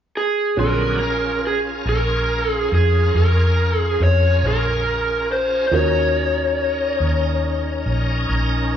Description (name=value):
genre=blues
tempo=47 BPM (dotted quarters)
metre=12/8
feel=straight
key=Bb minor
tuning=A4 = 440 Hz
part: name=lead guitar through a small cranked amp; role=melody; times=0.2-8.3 s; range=Ab4 to Db5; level=-20 LUFS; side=equal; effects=overdrive
part: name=warm grand piano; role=accompaniment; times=0.6-8.8 s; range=Db4 to C6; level=-25 LUFS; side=right 3 dB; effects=none
part: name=bright tonewheel organ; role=sustained chords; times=0.6-8.8 s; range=D3 to Bb4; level=-26 LUFS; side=left 1 dB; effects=slow rotary speaker, chorus vibrato
part: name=vintage muted fingered electric bass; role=bass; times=0.6-8.8 s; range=Bb1 to F2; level=-20 LUFS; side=equal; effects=none
room=moderate large studio reverb, RT60 1.4 s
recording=band playing live in one room, nothing above 7.5 kHz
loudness=-17 LUFS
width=side -9 dB against mid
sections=0.6-8.8 A section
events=none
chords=0.0 N.C.; 0.6 Bbm7; 5.7 Ebm7